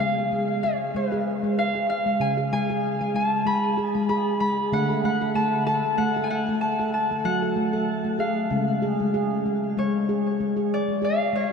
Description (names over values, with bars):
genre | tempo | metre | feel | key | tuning
world meditative, meditative tuned percussion | 95 BPM | 4/4 | swing 55% on 16ths | C# phrygian dominant | A4 = 436 Hz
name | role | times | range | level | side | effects
concert harp | melody | 0.0-11.5 s | B4 to B5 | -25 LUFS | left 1 dB | shimmer reverb, ping-pong delay
handpan | arpeggios | 0.0-11.5 s | C#3 to A4 | -24 LUFS | equal | shimmer reverb
room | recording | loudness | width
wet huge ambient reverb, RT60 7.1 s | in a vast, echoing space | -22 LUFS | side -6 dB against mid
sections
0.0-9.8 A section; 9.8-11.5 B section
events
none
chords
0.0 C#; 4.7 D5; 7.2 F#m; 8.5 C#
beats
0.30 0.93 1.56 | 2.20 2.83 3.46 4.09 | 4.72 5.35 5.98 6.61 | 7.24 7.87 8.51 9.14 | 9.77 10.40 11.03